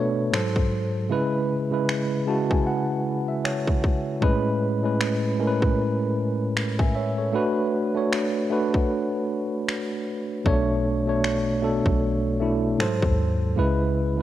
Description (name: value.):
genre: contemporary R&B.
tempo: 77 BPM.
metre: 4/4.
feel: swing 58% on 16ths.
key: unclear.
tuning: A4 = 441 Hz.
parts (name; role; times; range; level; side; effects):
tine electric piano; accompaniment; 0.0-14.2 s; G#2 to A5; -22 LUFS; equal; medium stereo tremolo, cassette tape.
trap drum kit; drums; 0.3-13.2 s; finger snaps, kick drum; -26 LUFS; equal; cassette tape.
warm 808-style bass; bass; 10.5-14.2 s; B1 to D#2; -27 LUFS; equal; none.
room: light reverb, digital ambience.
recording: home recording on cassette.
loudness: -21 LUFS.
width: side -13 dB against mid.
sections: 0.0-14.2 A section.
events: tine electric piano fill 1.9-4.2; break 8.9-10.5.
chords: 0.3 G#7b9; 1.1 C#m7; 4.2 Amaj9; 7.3 D6/A; 10.5 Bm9; 12.8 G#7b9; 13.6 C#m7.